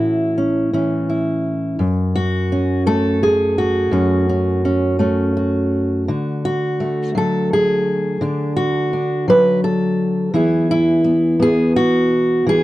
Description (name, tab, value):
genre	folk, solo fingerstyle acoustic guitar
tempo	84 BPM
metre	3/4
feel	straight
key	unclear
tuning	A4 = 440 Hz
part	fingerpicked steel-string acoustic guitar	solo	0.0-12.6 s	F#2 to B4	-15 LUFS	equal	none
room	light reverb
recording	dry, close 1970s-style studio recording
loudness	-15 LUFS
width	side -16 dB against mid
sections	0.0-12.6 A section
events	none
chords	0.0 A; 1.8 F#m; 6.1 D; 10.3 E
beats	0.38 1.09 | 1.80 2.51 3.22 | 3.93 4.64 5.36 | 6.08 6.79 7.50 | 8.21 8.92 9.63 | 10.34 11.05 11.76 | 12.47